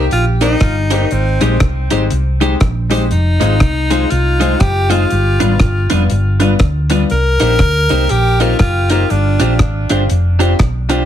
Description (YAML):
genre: ska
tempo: 120 BPM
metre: 4/4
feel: swing 60% on 8ths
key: C minor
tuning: A4 = 440 Hz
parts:
  - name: bright tenor saxophone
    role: melody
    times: 0.0-9.6 s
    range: C4 to Bb4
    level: -18 LUFS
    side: left 1 dB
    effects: tape echo
  - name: clean electric guitar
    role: accompaniment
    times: 0.0-11.0 s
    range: D4 to C5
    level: -19 LUFS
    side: right 4 dB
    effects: none
  - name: bright upright piano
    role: stabs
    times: 0.0-11.0 s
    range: G3 to G4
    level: -20 LUFS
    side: left 5 dB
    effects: tape echo
  - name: hollow-body short-scale fingered electric bass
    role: bass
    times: 0.0-11.0 s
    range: F1 to D2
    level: -14 LUFS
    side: equal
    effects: none
  - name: deep reggae drum kit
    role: drums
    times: 0.1-11.0 s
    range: hi-hat, kick drum, rim click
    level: -16 LUFS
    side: equal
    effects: none
room: moderate studio reverb, RT60 0.6 s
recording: heavily compressed radio sound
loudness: -11 LUFS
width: side -10 dB against mid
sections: 0.0-11.1 A section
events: none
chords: 0.0 Cm7; 1.1 Abmaj7; 3.1 Fm7; 5.1 G7; 7.1 Cm7; 9.1 G7sus4